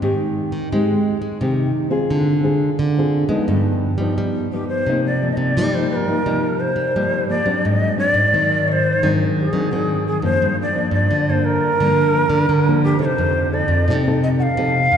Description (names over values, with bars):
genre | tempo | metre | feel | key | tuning
samba and choro | 87 BPM | 4/4 | straight | C minor | A4 = 442 Hz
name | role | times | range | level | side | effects
nylon-string guitar | accompaniment | 0.0-15.0 s | G2 to A4 | -21 LUFS | left 2 dB | none
nylon-string guitar | bass | 0.0-15.0 s | F2 to Ab3 | -20 LUFS | right 1 dB | none
mellow hollow shakuhachi | melody | 4.5-15.0 s | G4 to F#5 | -19 LUFS | equal | none
room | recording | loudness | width
wet church reverb, RT60 3.6 s | recorded in a church or concert hall, nothing above 10.7 kHz | -16 LUFS | side -8 dB against mid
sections
0.0-4.9 A section; 4.9-15.0 B section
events
none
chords
0.0 Abmaj7; 2.1 Dm7b5; 3.5 G7b13; 4.9 Cm11; 7.6 Ab7#11; 10.4 Gm7; 13.2 F7